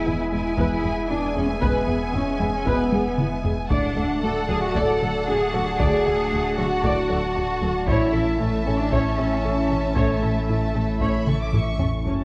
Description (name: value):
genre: cinematic, hybrid orchestral and electronic film score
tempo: 115 BPM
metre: 4/4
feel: straight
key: unclear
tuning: A4 = 440 Hz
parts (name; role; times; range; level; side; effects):
- warm symphonic violin section; melody; 0.0-12.1 s; G#5 to D6; -38 LUFS; equal; none
- warm symphonic violin section; second line; 0.0-12.2 s; A4 to A5; -35 LUFS; equal; none
- chorused pulse-width pad; sustained chords; 0.0-12.2 s; G#3 to E5; -33 LUFS; equal; none
- dark French horn section; sustained chords; 0.0-11.5 s; A3 to A4; -29 LUFS; equal; none
- punchy sub bass; bass; 0.0-12.2 s; D1 to A1; -32 LUFS; equal; none
- rich symphonic cello section; bass; 0.0-12.1 s; F#2 to A4; -31 LUFS; equal; none
- dark symphonic viola section; accompaniment; 0.1-12.2 s; C#4 to D5; -33 LUFS; equal; none
- woody wave-folded pluck; arpeggios; 0.1-12.2 s; D3 to A4; -35 LUFS; equal; none
- dark symphonic double bass section; bass; 0.1-12.1 s; F#1 to E2; -31 LUFS; equal; none
- warm trombone section; sustained chords; 0.6-11.2 s; A2 to C#4; -37 LUFS; equal; none
- solo taiko drums; drums; 0.6-12.2 s; none; -29 LUFS; equal; none
room: moderate scoring stage reverb, RT60 1.8 s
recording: worn, warbling old tape, cassette tape, warbly pitch drift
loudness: -22 LUFS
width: mono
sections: 0.0-12.1 A section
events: drum fill 2.9-3.7, 11.3-12.1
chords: 0.0 E; 3.7 D; 7.9 A